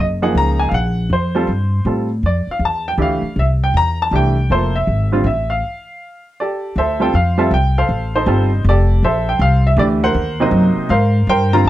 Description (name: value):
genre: jazz piano trio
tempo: 159 BPM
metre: 3/4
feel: swing 64% on 8ths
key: F major, D minor from 6.8 s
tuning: A4 = 440 Hz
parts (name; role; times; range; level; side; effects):
- clear baby grand piano; melody; 0.0-11.7 s; B#2 to Bb5; -17 LUFS; right 1 dB; none
- upright bass; bass; 0.0-11.7 s; F1 to A2; -16 LUFS; equal; none
room: light reverb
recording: none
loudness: -14 LUFS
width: side -14 dB against mid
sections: 0.0-6.8 A section; 6.8-11.7 B section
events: stop 5.6-6.8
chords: 0.0 Gb6; 1.1 Fadd9; 2.2 Dmadd9; 3.4 C; 4.5 Fmaj9; 6.8 Dm7; 7.9 F13; 9.0 Bbmaj9#11; 10.2 G#9